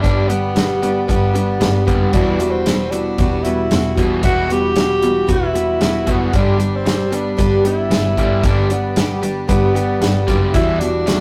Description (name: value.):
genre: folk rock and heartland rock.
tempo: 114 BPM.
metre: 4/4.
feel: straight.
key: G major.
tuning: A4 = 440 Hz.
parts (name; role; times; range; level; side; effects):
breathy tenor saxophone; melody; 0.0-11.2 s; B3 to G4; -24 LUFS; equal; none.
picked plugged-in twelve-string acoustic guitar; accompaniment; 0.0-11.2 s; E2 to G4; -22 LUFS; equal; none.
overdriven electric guitar; riff; 0.0-11.2 s; E2 to G3; -27 LUFS; equal; none.
clear double bass; bass; 0.0-11.2 s; E1 to G1; -23 LUFS; equal; none.
natural country drum kit; drums; 0.0-11.2 s; hi-hat, kick drum, snare drum; -21 LUFS; equal; none.
room: moderate stone room reverb, RT60 1.0 s.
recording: rough rehearsal-room recording, tube saturation.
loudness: -16 LUFS.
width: mono.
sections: 0.0-11.2 A section.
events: none.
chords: 0.0 G; 2.1 Emadd9; 6.3 G; 10.5 Emadd9.